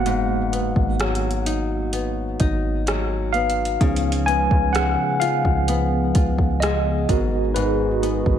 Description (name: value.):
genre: contemporary R&B.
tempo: 64 BPM.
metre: 4/4.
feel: straight.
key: G# dorian.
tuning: A4 = 440 Hz.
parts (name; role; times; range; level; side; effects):
mellow tine electric piano; accompaniment; 0.0-8.4 s; E#3 to G#5; -23 LUFS; right 1 dB; medium stereo tremolo.
nylon-string guitar; arpeggios; 0.0-8.4 s; G#2 to E#4; -26 LUFS; left 5 dB; ping-pong delay.
warm 808-style bass; bass; 0.0-8.4 s; F#1 to C#2; -24 LUFS; equal; none.
smooth R&B drum kit; drums; 0.1-8.4 s; hi-hat, kick drum, rim click; -24 LUFS; right 1 dB; none.
hollow soft pad; sustained chords; 3.8-8.4 s; C#3 to G#4; -26 LUFS; right 1 dB; chorus, sidechain pumping.
room: light reverb, digital ambience.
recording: none.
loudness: -18 LUFS.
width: side -9 dB against mid.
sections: 0.0-8.4 A section.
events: tine electric piano solo 0.0-8.4.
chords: 0.0 G#m7; 3.8 C#7; 7.1 G#m7.